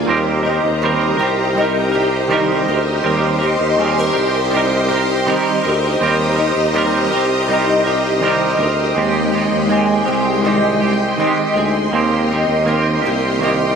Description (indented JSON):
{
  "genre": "dream pop",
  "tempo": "81 BPM",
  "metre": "4/4",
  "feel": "straight",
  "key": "Eb major",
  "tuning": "A4 = 440 Hz",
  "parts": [
    { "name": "string machine, violins", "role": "sustained chords", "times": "0.0-13.8 s", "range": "Ab3 to C6", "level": "-19 LUFS", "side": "equal", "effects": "ensemble chorus" },
    { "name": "fingerpicked twelve-string acoustic guitar", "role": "arpeggios", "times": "0.0-13.8 s", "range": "Bb3 to Bb4", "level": "-20 LUFS", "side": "left 3 dB", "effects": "ensemble chorus, tape echo" },
    { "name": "warm tuba", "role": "bass", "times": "0.0-13.8 s", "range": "C2 to Eb2", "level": "-21 LUFS", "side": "equal", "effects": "none" },
    { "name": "clean electric guitar", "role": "accompaniment", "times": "0.1-13.8 s", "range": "Eb3 to Bb4", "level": "-19 LUFS", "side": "right 4 dB", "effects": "harmonic tremolo, analog chorus" },
    { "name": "celesta", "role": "texture", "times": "0.4-4.2, 10.1-12.3 s", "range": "Bb4 to Eb5", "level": "-32 LUFS", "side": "right 4 dB", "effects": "none" }
  ],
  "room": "moderate shimmer reverb, RT60 5.3 s",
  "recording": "none",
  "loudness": "-14 LUFS",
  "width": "side -6 dB against mid",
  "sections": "0.1-13.8 A section",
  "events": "none",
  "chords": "0.1 Eb6; 6.0 Cm7; 9.0 Abmaj7; 11.9 Cm7"
}